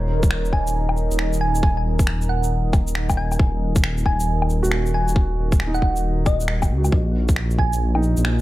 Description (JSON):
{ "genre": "future garage", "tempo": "136 BPM", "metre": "4/4", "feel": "swing 65% on 16ths", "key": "Eb minor", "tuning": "A4 = 441 Hz", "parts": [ { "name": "dark upright piano", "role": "accompaniment", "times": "0.0-8.4 s", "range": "Eb4 to Bb4", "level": "-30 LUFS", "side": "right 3 dB", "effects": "sidechain pumping, tape echo" }, { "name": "deep dark ambient pad", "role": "sustained chords", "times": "0.0-8.4 s", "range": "Bb3 to Bb5", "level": "-31 LUFS", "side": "right 1 dB", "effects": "chorus, built-in reverb, sidechain pumping" }, { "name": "dark detuned saw bass", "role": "bass", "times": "0.0-8.4 s", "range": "Eb1 to Db2", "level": "-21 LUFS", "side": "equal", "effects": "sidechain pumping" }, { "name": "electronic kick drum", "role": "drums", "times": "0.2-7.7 s", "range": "none", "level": "-18 LUFS", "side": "equal", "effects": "small room ambience" }, { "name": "electronic shaker, finger snaps and woodblock", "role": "drums", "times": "0.2-8.4 s", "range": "none", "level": "-28 LUFS", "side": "left 2 dB", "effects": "small room ambience" }, { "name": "thumb-piano-like synth pluck", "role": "melody", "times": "0.5-7.8 s", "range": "Eb5 to Ab5", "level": "-28 LUFS", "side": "right 1 dB", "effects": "chorus, phaser, analog delay" } ], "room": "digital ambience", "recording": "none", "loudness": "-18 LUFS", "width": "side -16 dB against mid", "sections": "0.0-8.4 A section", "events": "none", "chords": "0.0 Ebm; 6.9 Bbsus4" }